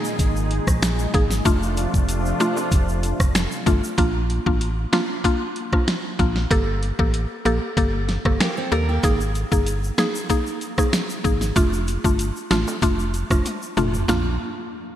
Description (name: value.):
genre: dancehall.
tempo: 95 BPM.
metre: 4/4.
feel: straight.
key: Bb major.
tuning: A4 = 440 Hz.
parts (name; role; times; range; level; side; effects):
mallet-like synth pluck; accompaniment; 0.0-14.3 s; A3 to A4; -24 LUFS; left 1 dB; chorus, sidechain pumping.
warm analog pad; sustained chords; 0.0-4.0 s; Bb2 to Ab4; -27 LUFS; equal; chorus, sidechain pumping.
tube shaker and timbales; percussion; 0.0-4.0, 9.0-14.4 s; none; -35 LUFS; equal; none.
organ-like FM bass; bass; 0.2-14.4 s; F1 to Eb2; -24 LUFS; equal; none.
pop drum kit; drums; 0.2-14.2 s; finger snaps, hi-hat, kick drum, rim click, snare drum, toms; -22 LUFS; equal; vintage 12-bit sampler grit, gated reverb.
fingerpicked steel-string acoustic guitar; arpeggios; 8.4-9.2 s; Bb3 to Bb4; -29 LUFS; right 4 dB; wide subtle chorus.
room: moderate lush hall reverb, RT60 2.9 s.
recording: bright 1980s-style digital production.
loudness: -19 LUFS.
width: side -11 dB against mid.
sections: 0.0-4.0 A section; 4.0-14.1 B section.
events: drum fill 13.5-14.1.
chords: 0.0 Absus2; 1.5 F6; 4.0 Bb; 6.5 Gmadd9; 9.0 Absus2; 11.6 F6; 14.1 Bb.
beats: 0.19 0.82 | 1.46 2.09 2.72 3.35 | 3.98 4.61 5.25 5.88 | 6.51 7.14 7.77 8.40 | 9.04 9.67 10.30 10.93 | 11.56 12.19 12.82 13.46 | 14.09.